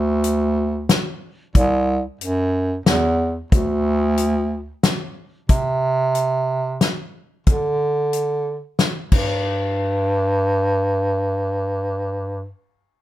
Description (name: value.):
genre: honky-tonk and classic country.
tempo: 91 BPM.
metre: 3/4.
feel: straight.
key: unclear.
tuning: A4 = 440 Hz.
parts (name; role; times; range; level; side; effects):
clear bass clarinet; bass; 0.0-12.5 s; C2 to D3; -19 LUFS; right 1 dB; none.
natural country drum kit; drums; 0.2-9.3 s; crash cymbal, hi-hat, kick drum, snare drum; -18 LUFS; left 1 dB; none.
room: light reverb.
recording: none.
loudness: -18 LUFS.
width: side -14 dB against mid.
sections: 0.0-5.5 A section; 5.5-9.5 B section; 9.5-13.0 C section.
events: none.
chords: none.